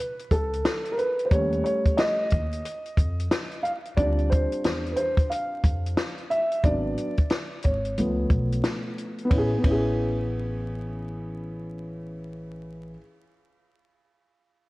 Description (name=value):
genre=hip hop, jazz-hop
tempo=90 BPM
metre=4/4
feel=swing 62% on 16ths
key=unclear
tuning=A4 = 440 Hz
part: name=dark concert grand piano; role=accompaniment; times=0.0-13.0 s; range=E#3 to F5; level=-27 LUFS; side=equal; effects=none
part: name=compact cocktail drum kit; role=drums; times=0.2-9.9 s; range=hi-hat, kick drum, ride cymbal, snare drum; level=-24 LUFS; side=equal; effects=none
part: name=upright bass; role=bass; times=0.3-12.9 s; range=G#1 to F2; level=-29 LUFS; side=equal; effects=none
room=light reverb, studio ambience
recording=worn, warbling old tape, cassette tape, vinyl crackle, warbly pitch drift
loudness=-23 LUFS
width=side -20 dB against mid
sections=0.0-9.3 A section; 9.3-12.0 B section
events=grand piano solo 0.0-9.3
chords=0.0 Aadd9; 1.3 D#7#11; 4.0 Dm11; 6.6 G#m7b5; 8.0 C#aug7; 9.3 Amaj9